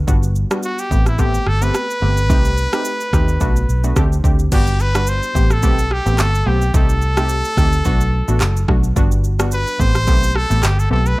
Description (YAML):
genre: afrobeats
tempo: 108 BPM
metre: 4/4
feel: swing 55% on 16ths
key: unclear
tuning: A4 = 439 Hz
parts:
  - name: vintage muted fingered electric bass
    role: bass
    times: 0.0-11.1 s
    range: F#1 to Eb2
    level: -17 LUFS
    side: equal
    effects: none
  - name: glassy wavetable pluck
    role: accompaniment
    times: 0.1-11.1 s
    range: G3 to G4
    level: -24 LUFS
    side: equal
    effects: chorus
  - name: afro-pop drum kit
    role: drums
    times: 0.1-11.2 s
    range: crash cymbal, handclaps, kick drum, rim click, shaker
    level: -18 LUFS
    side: equal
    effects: none
  - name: bright trumpet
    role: melody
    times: 0.6-11.2 s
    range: E4 to C5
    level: -21 LUFS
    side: equal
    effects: slapback echo
room: little or no reverb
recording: none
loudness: -14 LUFS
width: side -20 dB against mid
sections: 0.0-4.5 A section; 4.5-11.2 B section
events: none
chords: 0.1 Gmaj7; 0.9 Am9; 2.3 Cm6; 3.4 Bm7; 4.0 D7sus4; 4.5 Gmaj7; 5.4 Am9; 6.7 Cm6; 7.9 Bm7; 9.0 Gmaj7; 9.8 Am9